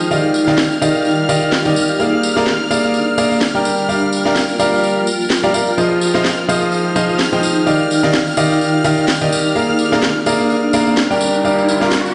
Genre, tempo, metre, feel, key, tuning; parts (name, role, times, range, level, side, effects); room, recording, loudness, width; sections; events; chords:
piano house; 127 BPM; 4/4; swing 56% on 16ths; A4 = 441 Hz
string machine, violins; sustained chords; 0.0-12.1 s; F6; -26 LUFS; equal; ensemble chorus
clear concert grand piano; riff; 0.0-11.9 s; Eb3 to G5; -18 LUFS; equal; tape echo
tambourine; percussion; 0.0-12.1 s; -28 LUFS; equal
granular cloud pad; texture; 0.0-12.1 s; D4 to D6; -22 LUFS; equal; built-in reverb
electronic snare drum; drums; 0.5-12.0 s; -22 LUFS; equal; low-pass filter on snare
riser; sound effects; 11.0-12.1 s; -26 LUFS; equal
moderate plate reverb, RT60 1.8 s, small room ambience; played on a big sound system in a bare room, stone room reverb, nothing above 10.4 kHz; -15 LUFS; mono
0.0-12.1 A section
riser 11.0-12.1
0.1 Ebmaj9; 2.0 Bb7; 3.7 Gm7; 5.8 Fm7; 7.7 Ebmaj9; 9.6 Bb7; 11.2 Gm7